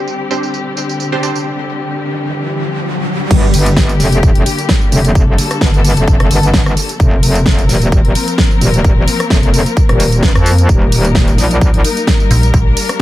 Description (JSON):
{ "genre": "bass house", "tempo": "130 BPM", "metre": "4/4", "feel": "swing 54% on 16ths", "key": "G minor", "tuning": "A4 = 440 Hz", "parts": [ { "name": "dark studio string section", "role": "sustained chords", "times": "0.0-13.0 s", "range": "D3 to Bb4", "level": "-19 LUFS", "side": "left 3 dB", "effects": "sidechain pumping" }, { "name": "riser", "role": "sound effects", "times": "1.2-3.3 s", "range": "none", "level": "-22 LUFS", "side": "equal", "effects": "none" }, { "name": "big-room dance drum kit", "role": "drums", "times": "0.1-13.0 s", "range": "crash cymbal, hi-hat, rim click, snare drum, tambourine", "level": "-18 LUFS", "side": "equal", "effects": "none" }, { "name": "orchestra-hit-like synth stab", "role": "stabs", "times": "0.3-1.3 s", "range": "C4 to C5", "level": "-21 LUFS", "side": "right 3 dB", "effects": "built-in reverb, sidechain pumping, ping-pong delay" }, { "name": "metallic wobble bass", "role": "bass", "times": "3.3-11.8 s", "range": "Eb1 to F2", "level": "-12 LUFS", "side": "equal", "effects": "chorus, overdrive, sidechain pumping" }, { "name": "electronic kick drum", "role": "drums", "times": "3.3-12.6 s", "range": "none", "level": "-12 LUFS", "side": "equal", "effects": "none" }, { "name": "metallic FM bass", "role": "bass", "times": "12.3-12.8 s", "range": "Bb1", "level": "-10 LUFS", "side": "equal", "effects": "sidechain pumping" } ], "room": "little or no reverb", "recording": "low-pass filter", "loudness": "-10 LUFS", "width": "side -15 dB against mid", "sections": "0.0-3.3 A section; 3.3-13.0 B section", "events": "filter sweep 0.0-3.3; riser 1.2-3.3; drop 3.3-13.0", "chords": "0.0 Csus2; 3.3 Gm; 7.0 Fsus4; 10.7 Eb", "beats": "0.08 0.54 1.00 | 1.46 1.92 2.38 2.85 | 3.31 3.77 4.23 4.69 | 5.15 5.61 6.08 6.54 | 7.00 7.46 7.92 8.38 | 8.85 9.31 9.77 10.23 | 10.69 11.15 11.61 12.08 | 12.54 13.00" }